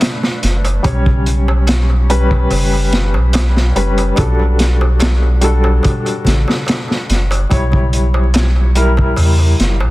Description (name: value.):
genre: trip hop.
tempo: 72 BPM.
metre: 4/4.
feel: straight.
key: unclear.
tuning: A4 = 439 Hz.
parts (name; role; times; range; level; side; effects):
felt-muted upright piano; accompaniment; 0.0-9.9 s; G3 to C#5; -19 LUFS; left 1 dB; tremolo, tape echo.
crunchy breakbeat drum kit; drums; 0.0-9.8 s; hi-hat, kick drum, snare drum; -17 LUFS; equal; none.
darbuka; percussion; 0.0-9.9 s; none; -24 LUFS; right 1 dB; none.
soft dub sub bass; bass; 0.4-9.9 s; F#1 to E2; -13 LUFS; equal; none.
room: studio ambience.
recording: dense, heavily limited modern master, vinyl crackle.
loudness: -11 LUFS.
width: side -18 dB against mid.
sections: 0.0-9.9 A section.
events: none.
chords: 0.0 Bm7; 0.8 Gmaj7#11; 4.2 Gmaj9; 7.5 F#7b9/B (rootless).